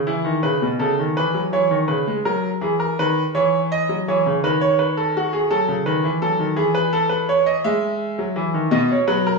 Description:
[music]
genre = classical, baroque-style two-part invention for grand piano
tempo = 55 BPM (dotted quarters)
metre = 12/8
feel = straight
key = E major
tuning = A4 = 440 Hz
[part]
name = bright grand piano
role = solo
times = 0.0-9.4 s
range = B2 to E5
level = -18 LUFS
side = right 1 dB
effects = none
[sound]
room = wet stone room reverb, RT60 1.3 s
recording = heard from further back in the room, small room ambience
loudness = -18 LUFS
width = side -3 dB against mid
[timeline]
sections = 0.1-9.4 A section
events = none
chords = 0.1 E5; 2.3 F#7; 4.4 B7/D#; 6.6 E; 8.7 B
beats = | 0.08 1.17 2.26 3.35 | 4.43 5.51 6.59 7.67 | 8.75

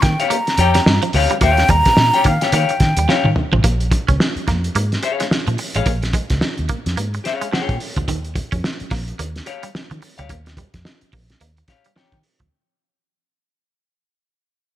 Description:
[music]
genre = funk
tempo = 108 BPM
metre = 4/4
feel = swing 60% on 16ths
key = unclear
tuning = A4 = 440 Hz
[part]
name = breathy concert flute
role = melody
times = 0.0-3.3 s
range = F5 to Bb5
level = -18 LUFS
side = equal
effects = none
[part]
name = twangy electric guitar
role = riff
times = 0.0-12.5 s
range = Eb3 to Db4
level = -26 LUFS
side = right 6 dB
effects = phaser
[part]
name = vintage muted fingered electric bass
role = bass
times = 0.0-12.5 s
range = A1 to Eb3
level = -20 LUFS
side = equal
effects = none
[part]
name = cloth-damped thuddy drum kit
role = drums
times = 0.0-12.5 s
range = hi-hat, kick drum, snare drum, toms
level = -20 LUFS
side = equal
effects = none
[part]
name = semi-hollow electric guitar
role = accompaniment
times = 0.2-12.2 s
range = G4 to G5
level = -21 LUFS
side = left 7 dB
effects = none
[sound]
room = light reverb, small room ambience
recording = none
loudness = -15 LUFS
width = side -12 dB against mid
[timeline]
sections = 0.0-3.6 A section; 3.6-12.5 B section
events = drum fill 3.1-3.6; fade-out 3.6-12.5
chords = 0.0 Eb9; 3.6 Bbm7; 8.1 Eb9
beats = 0.30 0.86 | 1.41 1.97 2.52 3.08 | 3.63 4.19 4.75 5.30 | 5.86 6.41 6.97 7.52 | 8.08 8.63 9.19 9.74 | 10.29 10.85 11.40 11.96

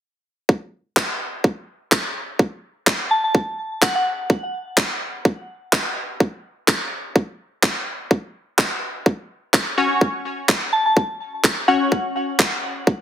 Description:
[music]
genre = bass house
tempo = 126 BPM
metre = 4/4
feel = swing 55% on 16ths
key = F# minor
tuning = A4 = 439 Hz
[part]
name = electronic kick drum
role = drums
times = 0.5-13.0 s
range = none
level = -17 LUFS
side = equal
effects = high-pass filter on kick, small room ambience
[part]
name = electronic handclaps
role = drums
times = 1.0-12.5 s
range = none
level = -21 LUFS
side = equal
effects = small room ambience
[part]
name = soft synth bell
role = melody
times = 3.1-4.0, 10.7-12.0 s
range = F#5 to A5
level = -22 LUFS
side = equal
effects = chorus, digital delay
[part]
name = band-passed chord stab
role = stabs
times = 9.8-13.0 s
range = C#4 to C#5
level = -21 LUFS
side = left 2 dB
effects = analog chorus, sidechain pumping, digital delay
[sound]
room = moderate digital room reverb, RT60 1.2 s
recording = heavily compressed radio sound, multiband compression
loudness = -19 LUFS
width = side -10 dB against mid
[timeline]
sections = 0.5-13.0 A section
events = none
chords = 0.5 F#5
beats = | 0.49 0.97 1.44 1.92 | 2.39 2.87 3.35 3.82 | 4.30 4.78 5.25 5.73 | 6.20 6.68 7.16 7.63 | 8.11 8.59 9.06 9.54 | 10.01 10.49 10.97 11.44 | 11.92 12.39 12.87

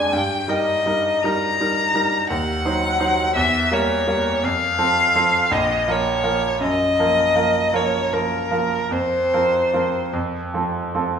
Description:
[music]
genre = classical, romantic duo for violin and grand piano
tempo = 49-59 BPM (dotted quarters)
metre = 6/8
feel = rubato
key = unclear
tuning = A4 = 440 Hz
[part]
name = rich violin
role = melody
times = 0.0-10.1 s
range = Bb4 to Bb5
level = -19 LUFS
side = left 2 dB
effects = none
[part]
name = bright concert grand piano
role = accompaniment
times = 0.0-11.2 s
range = Bb1 to D5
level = -21 LUFS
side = right 2 dB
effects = none
[sound]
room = wet recital hall reverb, RT60 1.7 s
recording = recorded in a church or concert hall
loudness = -17 LUFS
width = side -7 dB against mid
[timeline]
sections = 0.0-11.2 A section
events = none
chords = 0.1 Eb/G; 2.3 Cdim/Eb; 3.4 Edim7; 4.4 F; 5.5 Bbm; 6.6 Gbmaj7; 8.9 Fsus4; 10.1 F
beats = | 0.14 1.25 | 2.29 3.36 | 4.43 5.52 | 6.61 7.73 | 8.92 10.14

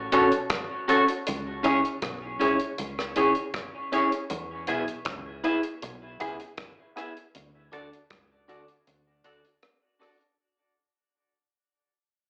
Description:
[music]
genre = roots reggae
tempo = 79 BPM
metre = 4/4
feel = straight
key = unclear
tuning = A4 = 439 Hz
[part]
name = deep dub fingered electric bass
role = bass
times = 0.0-9.4 s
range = A1 to E2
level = -40 LUFS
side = equal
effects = none
[part]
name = clean electric guitar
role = accompaniment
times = 0.1-10.2 s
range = C#4 to E5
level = -29 LUFS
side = equal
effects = harmonic tremolo, dub echo, slapback echo
[part]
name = filtered dub chord stab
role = stabs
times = 0.1-10.2 s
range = B3 to A4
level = -30 LUFS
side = equal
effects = phaser, slapback echo
[part]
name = deep reggae drum kit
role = drums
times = 0.1-10.4 s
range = hi-hat, kick drum, rim click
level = -35 LUFS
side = equal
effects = slapback echo
[sound]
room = moderate club reverb, RT60 0.6 s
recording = live gig heard through the venue's PA, club reverb, AM radio sound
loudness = -27 LUFS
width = mono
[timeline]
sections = 0.0-10.4 A section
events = fade-out 0.0-10.4; break 8.9-10.4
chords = 0.0 F#m; 1.3 C#m; 7.3 D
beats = 0.51 | 1.27 2.03 2.79 3.55 | 4.31 5.07 5.83 6.59 | 7.35 8.11 8.87 9.63

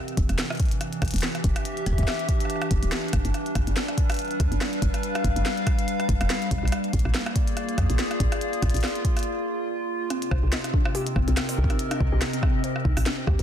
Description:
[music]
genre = IDM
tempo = 142 BPM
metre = 4/4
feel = swing 56% on 16ths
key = unclear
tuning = A4 = 439 Hz
[part]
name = warbly tape-like pad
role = sustained chords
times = 0.0-13.4 s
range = C3 to F5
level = -28 LUFS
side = equal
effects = chorus, built-in reverb
[part]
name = glitchy drum kit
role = drums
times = 0.1-13.4 s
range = hi-hat, rim click, snare drum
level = -31 LUFS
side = equal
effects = soft clipping on snare, tape echo
[part]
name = woody FM bass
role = bass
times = 0.2-13.4 s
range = D1 to F2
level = -25 LUFS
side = equal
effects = tube saturation
[part]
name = electronic kick drum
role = drums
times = 0.2-13.4 s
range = none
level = -25 LUFS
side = equal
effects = none
[part]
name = warbly dusty pluck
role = arpeggios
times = 10.1-13.4 s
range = C4 to C5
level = -32 LUFS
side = left 2 dB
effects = analog chorus, cassette tape, digital delay
[sound]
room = light reverb, digital ambience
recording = dense, heavily limited modern master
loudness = -22 LUFS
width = side -9 dB against mid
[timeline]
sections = 0.0-10.1 A section; 10.1-13.4 B section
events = break 9.3-10.1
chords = 0.0 Em7; 3.3 G7; 6.7 Bb7; 10.1 Cm7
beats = 0.39 0.81 1.23 | 1.65 2.08 2.50 2.92 | 3.34 3.77 4.19 4.61 | 5.03 5.46 5.88 6.30 | 6.72 7.14 7.57 7.99 | 8.41 8.84 9.26 9.68 | 10.10 10.53 10.95 11.37 | 11.79 12.22 12.64 13.06

